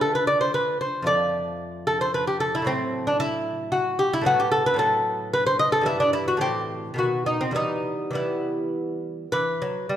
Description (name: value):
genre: classical, baroque-style dance for lute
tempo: 100-116 BPM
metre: 3/4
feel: rubato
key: E minor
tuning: A4 = 440 Hz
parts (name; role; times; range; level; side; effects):
- lute; solo; 0.0-10.0 s; F2 to D#5; -22 LUFS; equal; none
room: moderate recital hall reverb, RT60 1.7 s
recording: recorded in a church or concert hall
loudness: -22 LUFS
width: side -10 dB against mid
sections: 0.0-9.3 A section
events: none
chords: 0.0 Dm; 1.1 Dm/F; 2.7 Am6; 4.3 B5/A; 5.9 Em/G; 6.4 Am; 7.0 B; 7.6 Em; 9.3 E5